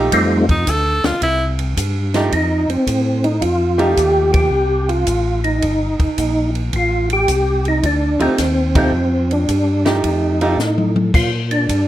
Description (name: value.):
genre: soul jazz organ trio.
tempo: 109 BPM.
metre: 4/4.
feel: swing 67% on 8ths.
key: F mixolydian.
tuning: A4 = 440 Hz.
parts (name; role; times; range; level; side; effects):
archtop guitar, miked and amplified; accompaniment; 0.0-4.5, 8.2-10.6 s; F3 to G4; -19 LUFS; right 3 dB; none.
tonewheel organ; bass; 0.0-11.9 s; G1 to Bb2; -20 LUFS; equal; chorus vibrato, slow rotary speaker.
percussive tonewheel organ; melody; 0.1-11.9 s; G3 to G4; -17 LUFS; equal; slow rotary speaker, chorus vibrato, plate reverb.
compact cocktail drum kit; drums; 0.1-11.9 s; crash cymbal, hi-hat, kick drum, ride cymbal, snare drum, toms; -22 LUFS; equal; none.
edgy tenor saxophone; melody; 0.5-1.4 s; Eb4 to A4; -18 LUFS; equal; plate reverb.
room: moderate large studio reverb, RT60 0.8 s.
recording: none.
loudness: -14 LUFS.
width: side -13 dB against mid.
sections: 0.0-2.3 A section; 2.3-11.9 B section.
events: tenor saxophone solo 0.0-2.3; band accent 4.2, 8.7; drum fill 10.6-11.1.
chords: 0.1 F9; 1.2 C5; 2.3 F9; 11.1 Bb.